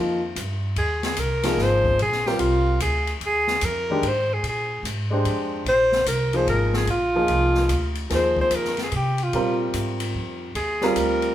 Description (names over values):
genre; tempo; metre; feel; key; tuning
modal jazz; 147 BPM; 3/4; swing 65% on 8ths; Bb mixolydian; A4 = 440 Hz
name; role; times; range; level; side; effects
warm concert grand piano; accompaniment; 0.0-11.3 s; Eb3 to C5; -25 LUFS; equal; none
upright bass; bass; 0.0-11.3 s; Ab1 to C3; -26 LUFS; equal; none
open jazz drum kit; drums; 0.4-11.3 s; hi-hat, kick drum, ride cymbal, snare drum; -31 LUFS; left 3 dB; none
breathy alto saxophone; melody; 0.8-11.3 s; F4 to C5; -22 LUFS; equal; none
room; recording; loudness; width
moderate large studio reverb, RT60 1.1 s; band playing live in one room; -20 LUFS; side -12 dB against mid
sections
0.0-11.3 A section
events
none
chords
0.0 Bb13sus4